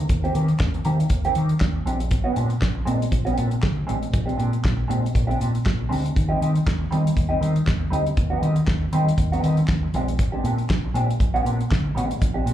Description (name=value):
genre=disco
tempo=119 BPM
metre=4/4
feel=swing 56% on 16ths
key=Eb major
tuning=A4 = 440 Hz
part: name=mellow electric guitar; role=accompaniment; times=0.1-12.5 s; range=Eb3 to G4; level=-26 LUFS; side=right 2 dB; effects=wah, lush chorus, plate reverb, slapback echo
part: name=fingered electric bass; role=bass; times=0.1-12.5 s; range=A1 to Eb3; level=-22 LUFS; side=equal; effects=none
part: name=damped 70s drum kit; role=drums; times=0.1-12.5 s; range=handclaps, hi-hat, kick drum, snare drum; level=-24 LUFS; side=equal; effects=none
room=little or no reverb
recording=live gig heard through the venue's PA, club reverb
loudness=-20 LUFS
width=side -12 dB against mid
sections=0.0-12.5 A section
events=none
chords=0.0 Eb6; 1.9 Bb13; 6.2 Eb6; 9.9 Bb13